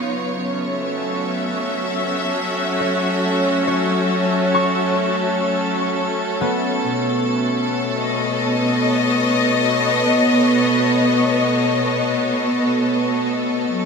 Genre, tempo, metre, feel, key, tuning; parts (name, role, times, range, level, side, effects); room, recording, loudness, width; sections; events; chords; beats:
ambient; free time; F# dorian; A4 = 438 Hz
clear symphonic string section; sustained chords; 0.0-13.9 s; B2 to E5; -17 LUFS; left 1 dB; shimmer reverb
drifting glass-harmonics texture; texture; 0.5-13.9 s; A3 to A5; -27 LUFS; left 1 dB; chorus, built-in reverb, shimmer reverb
concert harp; arpeggios; 2.8-9.5 s; B3 to C#6; -26 LUFS; right 1 dB; ping-pong delay, shimmer reverb
organ-like drone; drone; 13.7-13.9 s; barely audible
wet huge ambient reverb, RT60 7.9 s; -17 LUFS; side -5 dB against mid
0.1-13.9 A section
0.1 F#m7; 6.9 B9
free time